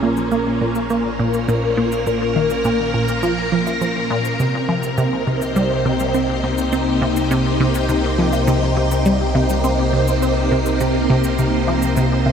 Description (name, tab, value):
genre	ambient, sequencer-driven space music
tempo	103 BPM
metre	4/4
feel	straight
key	unclear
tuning	A4 = 440 Hz
part	phased string machine	sustained chords	0.0-12.3 s	Bb2 to C5	-18 LUFS	equal	ensemble chorus, phaser, shimmer reverb
part	resonant blip pluck	riff	0.0-12.3 s	Bb2 to C4	-20 LUFS	equal	chorus, phaser, ping-pong delay
part	round analog bass	bass	0.0-12.3 s	Bb1 to C2	-25 LUFS	equal	none
part	woodblock and shaker	percussion	0.0-12.3 s	none	-33 LUFS	right 2 dB	ping-pong delay
room	wet huge ambient reverb, RT60 7.1 s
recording	none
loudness	-16 LUFS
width	side -7 dB against mid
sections	0.0-12.3 A section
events	fade-in on analog synth bass 0.0-12.3; fade-in on drum 0.0-12.3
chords	0.0 Bbm7; 4.4 Cm7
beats	0.32 0.90 1.48 | 2.06 2.65 3.23 3.81 | 4.39 4.98 5.56 6.14 | 6.72 7.31 7.89 8.47 | 9.05 9.64 10.22 10.80 | 11.38 11.97